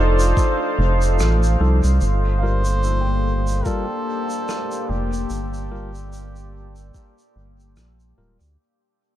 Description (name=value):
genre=ambient dub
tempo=73 BPM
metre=4/4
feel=swing 56% on 16ths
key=G minor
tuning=A4 = 440 Hz
part: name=trumpet with cup mute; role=melody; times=0.0-7.8 s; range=G4 to C5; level=-28 LUFS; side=equal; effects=dub echo
part: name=deep dark ambient pad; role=sustained chords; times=0.0-8.6 s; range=Bb3 to F5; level=-26 LUFS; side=left 1 dB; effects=chorus, built-in reverb
part: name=felt-muted upright piano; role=arpeggios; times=0.0-8.6 s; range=D4 to G5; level=-32 LUFS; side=right 4 dB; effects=dub echo
part: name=round analog bass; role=bass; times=0.0-8.6 s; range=D1 to D2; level=-19 LUFS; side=equal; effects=none
part: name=shaker and rim click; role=drums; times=0.2-8.6 s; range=none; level=-33 LUFS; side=right 1 dB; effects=dub echo
part: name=electronic kick drum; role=drums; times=0.4-7.1 s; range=none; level=-21 LUFS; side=equal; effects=none
part: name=tine electric piano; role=stabs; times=1.6-8.4 s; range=F3 to Bb4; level=-32 LUFS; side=left 3 dB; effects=dub echo
room=small room reverb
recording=dark, warm production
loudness=-18 LUFS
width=side -13 dB against mid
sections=0.0-8.6 A section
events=fade-out 0.0-8.6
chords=0.0 F7; 2.0 Gm7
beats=0.37 1.20 | 2.02 2.84 3.66 4.48 | 5.30 6.13 6.95 7.77